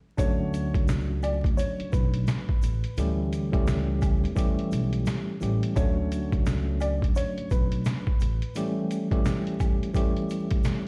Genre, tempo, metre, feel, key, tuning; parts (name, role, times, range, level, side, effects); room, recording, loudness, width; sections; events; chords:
hip hop, boom-bap hip-hop; 86 BPM; 4/4; swing 61% on 16ths; D major; A4 = 441 Hz
dark upright piano; melody; 0.2-8.5 s; B4 to D5; -38 LUFS; equal; high-pass filter, low-pass filter, delay
tine electric piano; accompaniment; 0.2-10.9 s; E3 to G4; -32 LUFS; equal; overdrive, cassette tape, high-pass filter, low-pass filter
upright bass; bass; 0.2-8.4 s; A1 to E2; -31 LUFS; equal
trip hop sampler-style drum kit; drums; 0.2-10.9 s; hi-hat, kick drum, snare drum; -29 LUFS; equal
egg shaker and woodblock; percussion; 0.2-10.8 s; -51 LUFS; equal
light reverb; played on a big sound system in a bare room, stone room reverb, vinyl crackle; -26 LUFS; mono
0.2-10.9 A section
break 0.0
0.2 Dmaj7; 3.0 A7; 5.8 Dmaj7; 8.6 A7